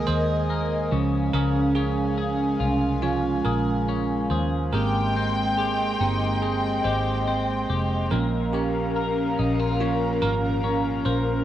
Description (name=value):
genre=pop ballad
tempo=71 BPM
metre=4/4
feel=straight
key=Ab major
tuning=A4 = 442 Hz
part: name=bell-like tine electric piano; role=accompaniment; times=0.0-11.4 s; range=Eb3 to C5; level=-28 LUFS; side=right 6 dB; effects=cassette tape
part: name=airy breathy pad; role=sustained chords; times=0.0-11.4 s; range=Ab3 to Eb6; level=-26 LUFS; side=equal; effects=chorus, cassette tape
part: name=twelve-string electric guitar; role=arpeggios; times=0.0-11.4 s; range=Bb2 to Bb4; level=-31 LUFS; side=left 6 dB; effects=warbly pitch drift, cassette tape, analog delay
part: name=vintage muted fingered electric bass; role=bass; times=0.0-11.4 s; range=F1 to Eb2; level=-27 LUFS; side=left 1 dB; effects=none
part: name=warm studio violin section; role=second line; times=4.7-8.1 s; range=G5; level=-28 LUFS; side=left 1 dB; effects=cassette tape, analog delay
room=wet booth ambience, RT60 0.2 s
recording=home recording on cassette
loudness=-21 LUFS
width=side -12 dB against mid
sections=0.0-11.4 A section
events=tine electric piano solo 0.0-11.4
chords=0.0 Ebsus4; 0.9 Db; 4.7 Abmaj7; 8.1 Bbm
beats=0.51 | 1.34 2.18 3.03 3.88 | 4.74 5.58 6.43 7.28 | 8.12 8.96 9.81 10.64